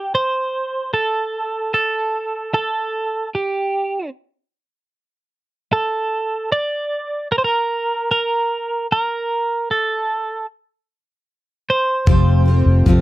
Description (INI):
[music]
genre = acoustic pop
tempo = 75 BPM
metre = 4/4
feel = straight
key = F major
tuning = A4 = 441 Hz
[part]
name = twelve-string electric guitar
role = melody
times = 0.0-13.0 s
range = G4 to D5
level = -19 LUFS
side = right 2 dB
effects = none
[part]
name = picked steel-string acoustic guitar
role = accompaniment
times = 12.1-13.0 s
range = F3 to G4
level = -18 LUFS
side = left 1 dB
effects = double-tracked left and right
[part]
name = vintage muted fingered electric bass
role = bass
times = 12.1-13.0 s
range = F1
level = -13 LUFS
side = equal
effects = none
[part]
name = electronic kick drum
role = drums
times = 12.1-13.0 s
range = none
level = -15 LUFS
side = equal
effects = none
[sound]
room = little or no reverb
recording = dry, close 1970s-style studio recording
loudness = -17 LUFS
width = side -16 dB against mid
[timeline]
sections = 0.0-13.0 A section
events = none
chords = 0.0 N.C.; 12.1 Fadd9